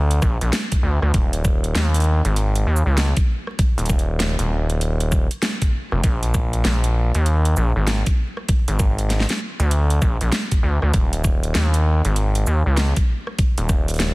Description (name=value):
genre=glitch hop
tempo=98 BPM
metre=4/4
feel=swing 63% on 16ths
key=unclear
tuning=A4 = 439 Hz
part: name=gritty driven synth bass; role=bass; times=0.0-14.1 s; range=Eb1 to Eb2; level=-18 LUFS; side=equal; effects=none
part: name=dubstep drum kit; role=drums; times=0.1-14.1 s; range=hi-hat, rim click, shaker, snare drum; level=-26 LUFS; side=equal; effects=studio reverb
part: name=electronic kick drum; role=drums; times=0.2-13.8 s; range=none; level=-18 LUFS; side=equal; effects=studio reverb
room=little or no reverb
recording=dense, heavily limited modern master, vinyl crackle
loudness=-17 LUFS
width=side -23 dB against mid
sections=0.0-14.1 A section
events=none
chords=none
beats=0.53 | 1.14 1.75 2.37 2.98 | 3.59 4.20 4.81 5.43 | 6.04 6.65 7.26 7.88 | 8.49 9.10 9.71 10.32 | 10.94 11.55 12.16 12.77 | 13.38 14.00